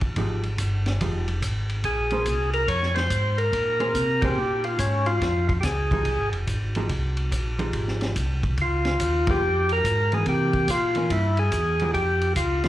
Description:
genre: soul jazz organ trio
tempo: 143 BPM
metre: 4/4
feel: swing 65% on 8ths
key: F minor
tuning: A4 = 438 Hz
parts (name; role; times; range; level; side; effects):
- mellow tonewheel organ; bass; 0.0-12.7 s; F1 to C3; -26 LUFS; equal; slow rotary speaker
- vintage drum kit; drums; 0.0-12.7 s; hi-hat, kick drum, ride cymbal, snare drum; -30 LUFS; equal; none
- hollow-body jazz guitar; accompaniment; 0.2-12.7 s; E3 to C5; -29 LUFS; right 2 dB; slapback echo
- percussive tonewheel organ; melody; 1.9-12.7 s; Db4 to Db5; -24 LUFS; equal; overdrive, slow rotary speaker, slapback echo
room: little or no reverb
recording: live gig heard through the venue's PA, club reverb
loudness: -21 LUFS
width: side -14 dB against mid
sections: 0.0-12.7 A section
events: band accent 4.2, 9.2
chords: 0.0 Fm9; 1.8 Bbm9; 5.2 Fm9; 8.6 Db; 10.3 C7; 11.9 Fsus2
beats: | 0.16 0.58 1.00 1.43 | 1.85 2.27 2.69 3.11 | 3.53 3.95 4.37 4.79 | 5.21 5.63 6.05 6.47 | 6.89 7.31 7.73 8.15 | 8.58 9.00 9.42 9.84 | 10.26 10.68 11.10 11.52 | 11.94 12.36

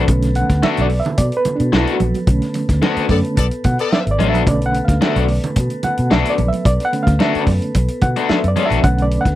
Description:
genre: funk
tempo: 110 BPM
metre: 4/4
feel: straight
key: B minor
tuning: A4 = 442 Hz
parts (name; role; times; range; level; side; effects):
- raw garage guitar; accompaniment; 0.0-8.8 s; A3 to F#4; -19 LUFS; left 7 dB; overdrive
- mellow tonewheel organ; sustained chords; 0.0-9.4 s; B3 to B4; -27 LUFS; equal; slow rotary speaker
- vintage muted fingered electric bass; bass; 0.0-9.4 s; G#1 to B2; -18 LUFS; equal; none
- reed electric piano; stabs; 0.1-9.4 s; D3 to F#5; -20 LUFS; right 2 dB; fast tremolo
- warm soul drum kit; drums; 0.1-9.4 s; hi-hat, kick drum, snare drum; -19 LUFS; equal; none
- congas; percussion; 0.4-8.8 s; none; -24 LUFS; right 4 dB; none
- warm horn section; second line; 3.1-4.0 s; B3 to D5; -20 LUFS; left 6 dB; none
room: little or no reverb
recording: dry, close 1970s-style studio recording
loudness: -14 LUFS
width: side -14 dB against mid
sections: 0.0-9.4 A section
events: reed electric piano solo 0.0-9.4; band accent 2.3-4.5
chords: 0.0 Bm7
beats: | 0.09 0.63 1.18 1.73 | 2.28 2.82 3.37 3.92 | 4.47 5.01 5.56 6.11 | 6.65 7.20 7.75 8.29 | 8.84

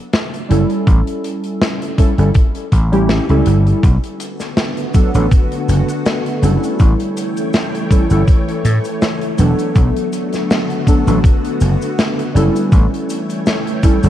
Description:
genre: vaporwave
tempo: 81 BPM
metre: 4/4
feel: swing 54% on 16ths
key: B minor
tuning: A4 = 439 Hz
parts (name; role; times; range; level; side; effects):
- modern studio drum kit; drums; 0.1-14.1 s; cabasa, hi-hat, snare drum; -21 LUFS; left 1 dB; none
- warbly lo-fi synth keys; accompaniment; 0.5-14.1 s; F#3 to A4; -19 LUFS; equal; analog chorus, ping-pong delay
- vintage slap bass; bass; 0.5-14.1 s; E1 to A2; -14 LUFS; equal; none
- electronic kick drum; drums; 0.9-14.0 s; none; -12 LUFS; equal; none
- soft string machine; sustained chords; 4.2-14.1 s; D3 to G5; -21 LUFS; left 1 dB; ensemble chorus
room: light reverb, small room ambience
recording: cassette tape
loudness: -12 LUFS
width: side -12 dB against mid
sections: 0.0-14.1 A section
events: none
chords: 0.0 B7(no3) (rootless); 0.9 A7; 3.8 Bm7; 6.8 A7; 9.8 Bm7; 12.7 A7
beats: 0.13 | 0.87 1.61 2.35 3.10 | 3.84 4.58 5.32 6.06 | 6.80 7.54 8.28 9.02 | 9.76 10.50 11.24 11.98 | 12.72 13.46

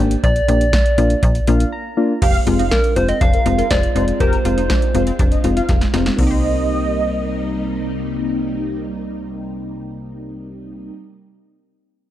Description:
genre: synth-pop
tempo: 121 BPM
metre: 4/4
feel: straight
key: C minor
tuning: A4 = 436 Hz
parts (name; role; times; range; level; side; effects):
- soft electric-piano-like synth keys; accompaniment; 0.0-11.0 s; Ab3 to Bb5; -22 LUFS; left 3 dB; chorus
- slap-like FM bass; bass; 0.0-10.9 s; F1 to C2; -21 LUFS; equal; none
- electro analog drum machine; drums; 0.1-6.3 s; crash cymbal, hi-hat, kick drum, snare drum; -18 LUFS; equal; none
- soft struck synth lead; melody; 0.2-5.7 s; Bb4 to F5; -21 LUFS; right 1 dB; chorus, tape echo
- mellow synth brass; second line; 2.2-7.6 s; Bb4 to F5; -25 LUFS; right 1 dB; chorus, tape echo
- ensemble organ-string; sustained chords; 2.2-10.9 s; C3 to F4; -26 LUFS; right 1 dB; phaser, ensemble chorus
- analog pluck; arpeggios; 2.2-11.1 s; C4 to C5; -28 LUFS; right 2 dB; chorus, tape echo
room: light reverb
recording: dark, warm production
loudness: -15 LUFS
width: side -12 dB against mid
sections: 0.0-2.2 A section; 2.2-6.2 B section; 6.2-10.2 C section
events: synth keys fill 1.2-2.2; break 1.7-2.2; drum fill 5.7-6.2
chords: 0.0 Bb; 2.2 Fm; 6.2 Cm7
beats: | 0.23 0.73 1.23 1.72 | 2.22 2.71 3.21 3.71 | 4.20 4.70 5.19 5.69 | 6.19 6.68 7.18 7.67 | 8.17 8.66 9.16 9.66

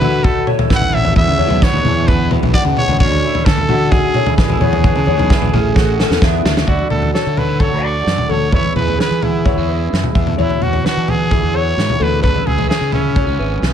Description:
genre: math rock and midwest emo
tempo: 130 BPM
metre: 4/4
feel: straight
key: D lydian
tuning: A4 = 443 Hz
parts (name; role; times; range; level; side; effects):
- growling trumpet; melody; 0.0-13.7 s; C#4 to F#5; -20 LUFS; equal; plate reverb
- twangy electric guitar; accompaniment; 0.0-13.7 s; D2 to F#4; -24 LUFS; right 11 dB; ensemble chorus, plate reverb
- electric guitar through a small old amp; arpeggios; 0.0-13.7 s; D4 to C#6; -21 LUFS; left 5 dB; plate reverb
- fuzz fingered electric bass; bass; 0.0-13.7 s; G#1 to E3; -19 LUFS; equal; overdrive
- loose indie drum kit; drums; 0.0-13.7 s; kick drum, snare drum, toms; -16 LUFS; equal; none
room: light reverb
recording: none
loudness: -12 LUFS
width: side -9 dB against mid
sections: 0.0-6.7 A section; 6.7-13.7 B section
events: drum fill 5.8-6.7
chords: 0.0 Dmaj9; 1.2 E7; 3.0 Dmaj9; 4.6 E7; 5.5 A6; 6.2 E7; 6.7 Dmaj9; 8.5 C#m7/E; 10.2 E13; 12.2 C#m7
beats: 0.25 0.71 | 1.17 1.62 2.08 2.54 | 3.00 3.46 3.92 4.38 | 4.84 5.30 5.76 6.22 | 6.68 7.14 7.61 8.07 | 8.53 8.99 9.46 9.92 | 10.38 10.85 11.31 11.78 | 12.24 12.70 13.16 13.63

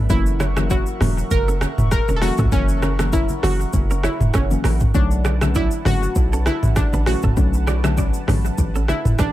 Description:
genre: afrobeats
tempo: 99 BPM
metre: 4/4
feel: swing 55% on 16ths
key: B minor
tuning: A4 = 440 Hz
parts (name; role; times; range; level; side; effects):
- analog pluck; melody; 0.0-9.3 s; B3 to A#4; -26 LUFS; right 1 dB; chorus, analog delay
- soft round pluck; accompaniment; 0.0-8.6 s; D3 to C#5; -27 LUFS; left 4 dB; chorus, analog delay
- warm analog pad; sustained chords; 0.0-9.3 s; A#4 to C#6; -33 LUFS; right 1 dB; chorus, sidechain pumping
- hard-hitting 808-style bass; bass; 0.1-9.3 s; E1 to C#2; -21 LUFS; equal; none
- afro-pop drum kit; drums; 0.1-9.3 s; hi-hat, kick drum, rim click, shaker, toms; -20 LUFS; equal; none
- clean electric guitar; riff; 0.4-9.3 s; C#4 to E5; -31 LUFS; right 6 dB; spring reverb, analog delay
- congas; percussion; 0.4-9.3 s; none; -29 LUFS; right 1 dB; none
room: little or no reverb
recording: echo-heavy mix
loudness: -16 LUFS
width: side -14 dB against mid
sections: 0.0-9.3 A section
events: none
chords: 0.1 F#7; 4.9 Bm7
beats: | 0.10 0.70 1.31 1.92 | 2.52 3.13 3.73 4.34 | 4.95 5.55 6.16 6.76 | 7.37 7.98 8.58 9.19

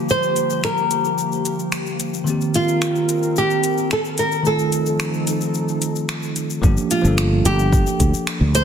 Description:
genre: sunset chillout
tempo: 110 BPM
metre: 4/4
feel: straight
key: G minor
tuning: A4 = 435 Hz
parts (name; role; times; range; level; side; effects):
- nylon-string guitar; melody; 0.0-8.6 s; F4 to C5; -20 LUFS; right 1 dB; ping-pong delay
- bell-like tine electric piano; accompaniment; 0.0-8.6 s; D3 to A4; -24 LUFS; right 1 dB; auto-pan, ping-pong delay
- airy breathy pad; sustained chords; 0.0-6.6 s; Eb3 to Bb4; -26 LUFS; left 2 dB; chorus
- smooth R&B drum kit; drums; 0.1-8.6 s; finger snaps, hi-hat, shaker; -27 LUFS; left 2 dB; soft clipping on snare
- sustaining fretless electric bass; bass; 6.6-8.6 s; G1 to D2; -17 LUFS; equal; none
- electronic kick drum; drums; 6.6-8.1 s; none; -17 LUFS; equal; overdrive
room: moderate plate reverb, RT60 1.7 s, digital ambience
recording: dense, heavily limited modern master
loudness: -17 LUFS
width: side -8 dB against mid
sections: 0.0-6.6 A section; 6.6-8.6 B section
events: none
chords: 0.0 Gm7; 2.3 Cm7; 4.5 F7; 6.6 Gm7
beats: | 0.09 0.64 1.18 1.73 | 2.27 2.82 3.36 3.91 | 4.45 5.00 5.54 6.09 | 6.63 7.18 7.73 8.27

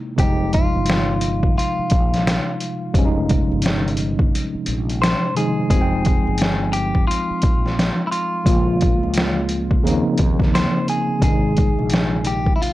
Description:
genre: lo-fi hip hop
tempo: 87 BPM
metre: 4/4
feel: swing 62% on 16ths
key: F minor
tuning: A4 = 440 Hz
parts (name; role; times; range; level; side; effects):
- mellow tine electric piano; accompaniment; 0.0-12.7 s; C3 to G5; -22 LUFS; equal; overdrive, medium stereo tremolo, cassette tape, low-pass filter
- clean electric guitar; melody; 0.2-12.7 s; E4 to C5; -25 LUFS; left 2 dB; phaser, low-pass filter
- fretless electric bass; bass; 0.2-12.6 s; F1 to Eb2; -24 LUFS; equal; analog chorus
- trip hop sampler-style drum kit; drums; 0.2-12.7 s; hi-hat, kick drum, snare drum; -19 LUFS; equal; none
room: little or no reverb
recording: dry, gritty hardware recording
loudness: -16 LUFS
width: side -16 dB against mid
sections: 0.0-5.7 A section; 5.7-12.7 B section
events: break 4.3-5.7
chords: 0.2 Fm9; 8.5 Bbm7; 9.8 Ebsus2; 11.2 Ab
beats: | 0.18 0.87 1.56 2.25 | 2.94 3.63 4.32 5.01 | 5.70 6.39 7.08 7.77 | 8.46 9.15 9.84 10.53 | 11.22 11.91 12.60

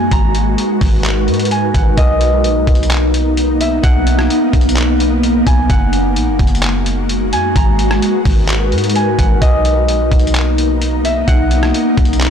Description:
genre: hip hop, atmospheric cloud-rap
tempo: 129 BPM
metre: 4/4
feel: half-time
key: B major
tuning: A4 = 441 Hz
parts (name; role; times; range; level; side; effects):
- Celtic harp; melody; 0.0-12.3 s; D#5 to A#5; -21 LUFS; equal; ping-pong delay
- ethereal airy pad; sustained chords; 0.0-12.3 s; G#3 to B4; -16 LUFS; left 1 dB; ensemble chorus, built-in reverb, sidechain pumping
- soft 808-style bass; bass; 0.0-12.3 s; F#1 to G#2; -16 LUFS; equal; none
- trip hop sampler-style drum kit; drums; 0.1-12.3 s; handclaps, hi-hat, kick drum, rim click; -16 LUFS; equal; none
room: little or no reverb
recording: blown-out, overdriven recording, overdrive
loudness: -11 LUFS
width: side -8 dB against mid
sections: 0.0-2.0 A section; 2.0-12.3 B section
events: none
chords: 0.1 G#m7; 2.0 Bmaj7; 5.7 F#add9; 7.6 G#m7; 9.4 Bmaj7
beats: | 0.12 0.58 1.05 1.51 | 1.98 2.44 2.91 3.37 | 3.84 4.30 4.77 5.23 | 5.70 6.16 6.63 7.09 | 7.56 8.02 8.49 8.95 | 9.42 9.88 10.35 10.81 | 11.28 11.74 12.21

